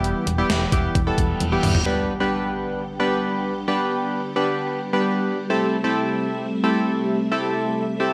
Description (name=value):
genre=synth-pop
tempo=132 BPM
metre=4/4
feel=straight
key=unclear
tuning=A4 = 438 Hz
part: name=warm analog keys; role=accompaniment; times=0.0-8.1 s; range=G3 to B4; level=-25 LUFS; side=equal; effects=chorus
part: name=ensemble organ-string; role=sustained chords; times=0.0-8.1 s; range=C3 to E5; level=-29 LUFS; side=equal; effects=phaser, ensemble chorus
part: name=solid FM bass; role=bass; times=0.0-1.8 s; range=E1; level=-26 LUFS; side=equal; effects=none
part: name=gated 80s digital drum machine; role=drums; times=0.0-1.9 s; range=hi-hat, kick drum, snare drum, toms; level=-25 LUFS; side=equal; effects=gated reverb, gated reverb snare
part: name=reverse cymbal and impact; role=sound effects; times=1.2-3.7 s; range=none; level=-36 LUFS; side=equal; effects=none
room=moderate plate reverb, RT60 1.3 s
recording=none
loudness=-22 LUFS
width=mono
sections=0.0-1.9 A section; 1.9-8.1 B section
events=reverse cymbal 1.2-1.9; drum fill 1.4-1.9; impact 1.9-3.7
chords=0.0 Em; 1.9 G; 5.5 C6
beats=| 0.04 0.50 0.95 1.41 | 1.86 2.32 2.77 3.23 | 3.68 4.13 4.59 5.04 | 5.50 5.95 6.41 6.86 | 7.32 7.77